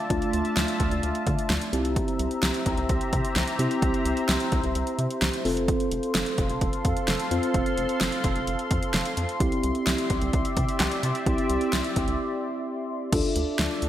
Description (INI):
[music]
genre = synth-pop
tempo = 129 BPM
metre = 4/4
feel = straight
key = unclear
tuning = A4 = 439 Hz
[part]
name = mellow tine electric piano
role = accompaniment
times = 0.0-13.9 s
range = A3 to C5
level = -28 LUFS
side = equal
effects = slow stereo tremolo
[part]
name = sweeping resonant pad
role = sustained chords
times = 0.0-13.9 s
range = F4 to C6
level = -30 LUFS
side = left 1 dB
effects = chorus
[part]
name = rubbery square bass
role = bass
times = 0.1-13.9 s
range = F1 to D3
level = -30 LUFS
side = equal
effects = none
[part]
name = deep house drum kit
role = drums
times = 0.1-13.9 s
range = crash cymbal, handclaps, hi-hat, kick drum, snare drum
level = -27 LUFS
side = equal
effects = overdrive, gated reverb
[sound]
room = moderate lush hall reverb, RT60 2.1 s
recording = bright 1980s-style digital production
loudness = -23 LUFS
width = side -12 dB against mid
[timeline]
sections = 0.0-13.1 A section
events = break 12.2-13.1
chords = 0.0 Dmadd9; 1.7 C7; 5.5 F; 9.4 Cadd9; 13.1 Dmadd9